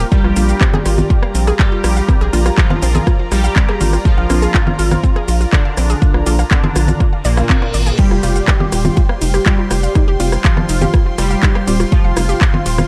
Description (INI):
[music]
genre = melodic techno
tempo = 122 BPM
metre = 4/4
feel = straight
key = unclear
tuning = A4 = 440 Hz
[part]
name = glassy wavetable pluck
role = second line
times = 0.0-12.9 s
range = Bb2 to G3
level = -28 LUFS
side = equal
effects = none
[part]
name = warm studio string section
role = sustained chords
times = 0.0-12.9 s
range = F4 to C6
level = -30 LUFS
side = equal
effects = sidechain pumping
[part]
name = unison pluck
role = arpeggios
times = 0.0-12.9 s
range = C4 to F5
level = -26 LUFS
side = equal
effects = sidechain pumping, digital delay
[part]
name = filtered dub chord stab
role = stabs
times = 0.0-12.9 s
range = C3 to F4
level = -27 LUFS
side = equal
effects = none
[part]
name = round analog bass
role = bass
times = 0.0-12.8 s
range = Eb1 to Bb1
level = -18 LUFS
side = equal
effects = sidechain pumping
[part]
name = house drum kit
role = drums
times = 0.0-12.9 s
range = congas, crash cymbal, handclaps, hi-hat, ride cymbal, rim click, shaker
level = -22 LUFS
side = equal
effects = none
[part]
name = resonant sweep polysynth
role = melody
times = 0.1-12.9 s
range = Bb2 to G4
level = -25 LUFS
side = equal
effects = chorus, phaser, sidechain pumping, tape echo
[part]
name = electronic kick drum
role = drums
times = 0.1-12.5 s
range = none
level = -15 LUFS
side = equal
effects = none
[part]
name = reverse cymbal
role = sound effects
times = 7.3-8.0 s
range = none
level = -32 LUFS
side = equal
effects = none
[sound]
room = little or no reverb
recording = none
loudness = -14 LUFS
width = mono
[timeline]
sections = 0.0-12.9 A section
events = reverse cymbal 7.3-8.0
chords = 0.1 Bb; 8.0 Fsus2